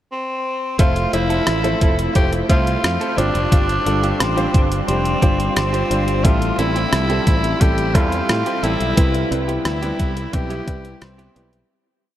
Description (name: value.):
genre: 1980s-style pop.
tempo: 88 BPM.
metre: 4/4.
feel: straight.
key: C major.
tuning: A4 = 441 Hz.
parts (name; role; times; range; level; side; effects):
raspy tenor saxophone; melody; 0.1-11.5 s; C4 to G4; -22 LUFS; equal; none.
clear concert grand piano; accompaniment; 0.8-11.7 s; G2 to E5; -22 LUFS; equal; none.
direct-recorded clean electric guitar; riff; 0.8-11.6 s; B3 to A4; -28 LUFS; right 3 dB; analog chorus.
fingered electric bass; bass; 0.8-11.6 s; F1 to A2; -22 LUFS; equal; none.
clean 12-bit digital drum machine; drums; 0.8-11.7 s; hi-hat, kick drum, rim click; -19 LUFS; equal; none.
room: wet huge ambient reverb, RT60 8.2 s.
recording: dreamy mix soaked in reverb.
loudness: -16 LUFS.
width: side -12 dB against mid.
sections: 0.0-0.8 pickup bar; 0.8-11.7 verse.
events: fade-out 9.0-11.7.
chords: 0.0 N.C.; 0.8 Fmaj7; 3.2 G7sus4; 6.2 Am7; 9.0 Cmaj7.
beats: 0.11 | 0.79 1.48 2.16 2.84 | 3.52 4.20 4.88 5.57 | 6.25 6.93 7.61 8.29 | 8.97 9.66 10.34 11.02.